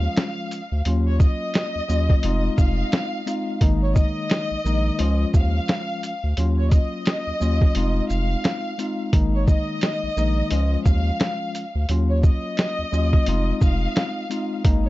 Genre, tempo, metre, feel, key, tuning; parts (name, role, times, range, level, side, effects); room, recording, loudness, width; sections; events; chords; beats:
hip hop, boom-bap hip-hop; 87 BPM; 4/4; swing 60% on 16ths; Db major; A4 = 440 Hz
warm studio violin section; melody; 0.0-14.9 s; Db5 to F5; -29 LUFS; left 1 dB; high-pass filter, low-pass filter, plate reverb, ping-pong delay
mellow tine electric piano; accompaniment; 0.0-14.9 s; Eb3 to F4; -27 LUFS; left 1 dB; medium stereo tremolo, high-pass filter, low-pass filter, plate reverb
saturated sub bass; bass; 0.0-14.9 s; F1 to Eb2; -21 LUFS; equal
lo-fi sampler-style drum kit; drums; 0.2-14.8 s; hi-hat, kick drum, shaker, snare drum; -19 LUFS; equal
light reverb; dark, warm production, nothing above 7.6 kHz; -19 LUFS; side -17 dB against mid
0.0-14.9 A section
0.0 Db; 0.9 Ebm7; 2.2 Fm7; 3.6 Absus2; 5.0 Db; 6.4 Ebm7; 7.8 Fm7; 9.1 Absus2; 10.5 Db; 11.9 Ebm7; 13.3 Fm7
0.17 | 0.85 1.54 2.23 2.92 | 3.61 4.30 4.99 5.68 | 6.37 7.06 7.75 8.44 | 9.13 9.82 10.51 11.20 | 11.89 12.58 13.27 13.96 | 14.65